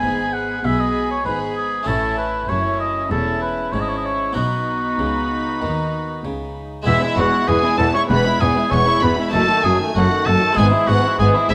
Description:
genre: classical, baroque-style concerto movement with solo episodes.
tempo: 97 BPM.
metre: 4/4.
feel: straight.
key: E major.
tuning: A4 = 440 Hz.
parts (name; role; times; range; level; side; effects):
rich chamber violin section; melody; 0.0-11.5 s; E5 to C#6; -29 LUFS; equal; none.
warm oboe; melody; 0.0-11.5 s; E4 to G#5; -23 LUFS; equal; none.
warm chamber violin section; second line; 0.0-11.5 s; A3 to G#4; -28 LUFS; equal; none.
dark chamber viola section; accompaniment; 0.0-11.5 s; D#3 to C#4; -29 LUFS; equal; none.
harpsichord; accompaniment; 0.0-11.5 s; E2 to G#4; -30 LUFS; equal; none.
rich chamber double bass section; bass; 0.0-11.5 s; E1 to D#2; -27 LUFS; equal; none.
warm chamber cello section; bass; 0.0-11.5 s; E2 to D#3; -26 LUFS; equal; none.
room: light reverb.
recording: close, detailed microphones.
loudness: -19 LUFS.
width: mono.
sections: 0.0-6.9 A section; 6.9-11.5 B section.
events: none.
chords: 0.0 E (rootless); 1.9 A; 4.4 B; 6.9 E; 9.3 D#dim/F#; 10.6 E/G#.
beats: 0.03 0.64 1.26 | 1.88 2.49 3.11 3.73 | 4.36 4.99 5.62 6.24 | 6.87 7.49 8.10 8.72 | 9.34 9.96 10.57 11.19.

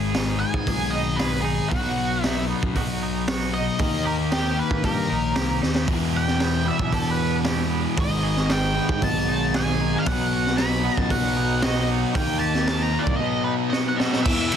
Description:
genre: quiet-loud alternative rock.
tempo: 115 BPM.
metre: 4/4.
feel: straight.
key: unclear.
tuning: A4 = 438 Hz.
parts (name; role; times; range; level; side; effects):
twangy electric guitar; arpeggios; 0.0-14.3 s; E2 to G#4; -32 LUFS; right 9 dB; tremolo.
thick fuzz guitar; riff; 0.0-14.6 s; E2 to D#4; -26 LUFS; left 10 dB; distortion.
picked electric bass; bass; 0.0-14.5 s; G#1 to D#3; -28 LUFS; right 1 dB; none.
raw garage drum kit; drums; 0.1-14.6 s; crash cymbal, hi-hat, kick drum, ride cymbal, snare drum; -26 LUFS; right 1 dB; none.
octave-fuzz lead guitar; melody; 0.4-14.6 s; F#4 to B5; -28 LUFS; right 1 dB; distortion, tape echo.
thick fuzz guitar; riff; 5.9-14.2 s; E2 to D#4; -29 LUFS; right 14 dB; distortion.
heavy high-gain guitar; riff; 14.3-14.6 s; E2 to E3; -30 LUFS; right 1 dB; distortion.
room: studio ambience.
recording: dense, heavily limited modern master.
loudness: -20 LUFS.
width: side -8 dB against mid.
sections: 0.0-14.3 A section.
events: lead electric guitar solo 0.0-14.3; drum fill 5.6, 13.7-14.3.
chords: 0.0 G#m; 1.7 B; 3.8 D#; 5.9 Em; 8.0 G#m; 10.1 B; 12.2 D#; 13.2 B.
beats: 0.15 0.67 1.19 | 1.71 2.24 2.76 3.28 | 3.80 4.32 4.84 5.37 | 5.89 6.41 6.93 7.45 | 7.98 8.50 9.02 9.54 | 10.07 10.59 11.11 11.64 | 12.16 12.68 13.21 13.73 | 14.25.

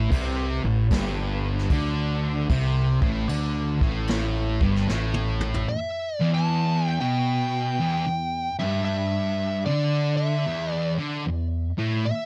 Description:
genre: stoner and doom metal.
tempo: 75 BPM.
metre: 4/4.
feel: swing 66% on 8ths.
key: E minor.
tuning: A4 = 440 Hz.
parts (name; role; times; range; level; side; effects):
overdriven electric guitar; riff; 0.0-12.0 s; E2 to D3; -33 LUFS; equal; none.
thick fuzz guitar; riff; 0.0-12.0 s; E2 to D3; -31 LUFS; equal; distortion.
thick fuzz guitar; riff; 0.0-12.0 s; E2 to D3; -31 LUFS; equal; distortion.
fuzz fingered electric bass; bass; 0.0-5.6 s; G1 to D2; -30 LUFS; equal; overdrive, tube saturation.
vintage brush drum kit; drums; 0.1-5.7 s; crash cymbal, kick drum, snare drum, toms; -30 LUFS; equal; none.
fuzz lead guitar; melody; 5.7-12.3 s; D5 to A5; -31 LUFS; equal; distortion.
room: little or no reverb.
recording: dark, warm production.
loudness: -25 LUFS.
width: mono.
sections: 0.0-5.7 A section; 5.7-12.3 B section.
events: drum fill 4.9-5.7.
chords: 0.0 Gsus24; 5.7 Em.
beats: 0.12 0.91 1.71 | 2.50 3.29 4.09 4.88 | 5.68 6.47 7.27 8.06 | 8.86 9.66 10.45 11.25 | 12.05.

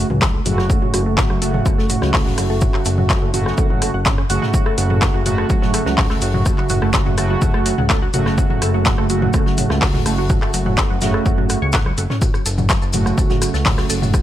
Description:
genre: melodic techno.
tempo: 125 BPM.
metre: 4/4.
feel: straight.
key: F# minor.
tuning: A4 = 440 Hz.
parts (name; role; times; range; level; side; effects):
tight sequenced synth; arpeggios; 0.0-14.2 s; F#3 to C#6; -25 LUFS; right 1 dB; chorus, phaser, sidechain pumping, tape echo.
analog synth brass; stabs; 0.0-14.2 s; C#3 to F#4; -22 LUFS; right 2 dB; chorus, sidechain pumping, tape echo.
fat analog bass; bass; 0.0-14.2 s; F#1 to C#2; -22 LUFS; equal; sidechain pumping.
techno drum kit; drums; 0.1-14.2 s; handclaps, hi-hat, rim click, toms; -22 LUFS; equal; sidechain pumping on toms, sidechain pumping on hats.
electronic kick drum; drums; 0.2-14.2 s; none; -18 LUFS; equal; none.
warm soul drum kit; drums; 0.2-14.2 s; hi-hat, shaker, snare drum; -31 LUFS; left 1 dB; sidechain pumping on hats, high-pass filter on hats, high-pass filter on snare, sidechain pumping on perc, high-pass filter on perc, high-pass filter on room.
maracas; percussion; 12.2-14.2 s; none; -30 LUFS; left 4 dB; none.
room: light reverb, small room ambience.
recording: none.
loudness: -15 LUFS.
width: side -12 dB against mid.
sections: 0.0-14.2 A section.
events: none.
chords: 0.0 F#m.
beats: 0.22 | 0.70 1.18 1.66 2.14 | 2.62 3.10 3.58 4.06 | 4.54 5.02 5.50 5.98 | 6.46 6.94 7.42 7.90 | 8.38 8.86 9.34 9.82 | 10.30 10.78 11.26 11.74 | 12.22 12.70 13.18 13.66 | 14.14.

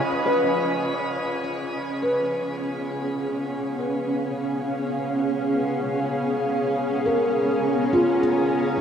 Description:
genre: ambient.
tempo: free time.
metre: none.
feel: none.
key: Db mixolydian.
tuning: A4 = 440 Hz.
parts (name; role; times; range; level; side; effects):
granular cloud pad; sustained chords; 0.0-8.8 s; Cb4 to F5; -25 LUFS; equal; built-in reverb.
felt-muted upright piano; arpeggios; 0.0-8.8 s; Eb4 to Cb5; -26 LUFS; left 1 dB; tape echo.
bowed-like drone; drone; 0.0-8.8 s; Db3 to Db4; -29 LUFS; right 1 dB; built-in reverb.
room: wet shimmer reverb, RT60 7.9 s.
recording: cassette tape.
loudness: -22 LUFS.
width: side -8 dB against mid.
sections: 0.1-8.8 A section.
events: fade-in on ambient pad 0.1-8.8; fade-in on felt piano 0.1-8.8; fade-in on synth drone 0.1-8.8.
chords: 0.1 Db7.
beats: free time.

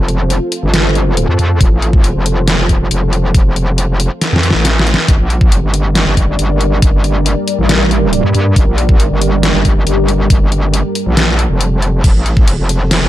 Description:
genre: heavy wobble dubstep.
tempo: 138 BPM.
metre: 4/4.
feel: half-time.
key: G minor.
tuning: A4 = 440 Hz.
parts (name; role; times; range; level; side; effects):
lush unison pad; sustained chords; 0.0-13.1 s; G3 to D5; -19 LUFS; equal; chorus, phaser, sidechain pumping.
metallic wobble bass; bass; 0.0-13.1 s; F1 to G2; -13 LUFS; equal; chorus, overdrive.
dubstep drum kit; drums; 0.1-13.0 s; crash cymbal, hi-hat, snare drum; -16 LUFS; equal; none.
electronic kick drum; drums; 1.6-12.5 s; none; -10 LUFS; equal; none.
room: little or no reverb.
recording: dark, warm production.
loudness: -10 LUFS.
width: side -14 dB against mid.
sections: 0.0-13.1 A section.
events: drum fill 4.2-5.1.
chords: 0.0 F; 5.1 Gm; 12.0 F.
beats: 0.30 0.74 1.17 | 1.61 2.04 2.48 2.91 | 3.35 3.78 4.21 4.65 | 5.08 5.52 5.95 6.39 | 6.82 7.26 7.69 8.13 | 8.56 9.00 9.43 9.87 | 10.30 10.74 11.17 11.61 | 12.04 12.48 12.91.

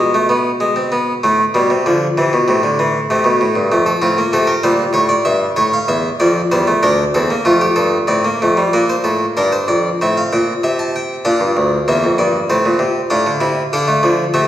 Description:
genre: classical, baroque-style 4-part fugue for harpsichord.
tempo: 96 BPM.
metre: 4/4.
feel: straight.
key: D minor.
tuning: A4 = 436 Hz.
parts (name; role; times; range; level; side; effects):
harpsichord; solo; 0.0-14.5 s; D2 to A5; -13 LUFS; equal; none.
room: wet recital hall reverb, RT60 1.7 s.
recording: heard from further back in the room.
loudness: -13 LUFS.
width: side -12 dB against mid.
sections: 0.0-8.7 A section; 8.7-14.5 B section.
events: none.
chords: 0.0 G#m/B; 1.2 Am; 3.7 Fadd11; 5.0 A; 6.2 Dm; 7.5 Dm/F; 10.0 Am; 11.2 Gm; 12.5 F/A; 13.7 Dm.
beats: 0.00 0.62 | 1.24 1.85 2.48 3.10 | 3.71 4.33 4.95 5.58 | 6.20 6.83 7.45 8.09 | 8.73 9.36 10.00 10.62 | 11.25 11.88 12.50 13.12 | 13.73 14.35.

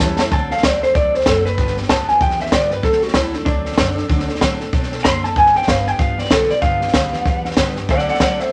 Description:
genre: rockabilly.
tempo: 190 BPM.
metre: 4/4.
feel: swing 61% on 8ths.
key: unclear.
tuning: A4 = 442 Hz.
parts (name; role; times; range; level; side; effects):
electric guitar through a small old amp; melody; 0.0-8.5 s; D4 to C6; -20 LUFS; equal; none.
picked steel-string acoustic guitar; accompaniment; 0.0-8.5 s; G2 to A4; -28 LUFS; equal; none.
upright bass; bass; 0.0-8.5 s; F#1 to B2; -29 LUFS; equal; none.
compact cocktail drum kit; drums; 0.0-8.4 s; hi-hat, kick drum, snare drum; -20 LUFS; equal; none.
room: moderate studio reverb, RT60 0.7 s.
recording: none.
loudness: -17 LUFS.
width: mono.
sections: 0.3-8.5 A section.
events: drum fill 0.0-0.3.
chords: 0.3 D7; 1.6 G7; 2.8 D7; 5.4 G7; 7.9 D7.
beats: 0.00 | 0.32 0.63 0.95 1.26 | 1.58 1.89 2.21 2.52 | 2.84 3.15 3.47 3.79 | 4.10 4.42 4.73 5.05 | 5.36 5.68 5.99 6.31 | 6.62 6.94 7.26 7.57 | 7.89 8.20 8.52.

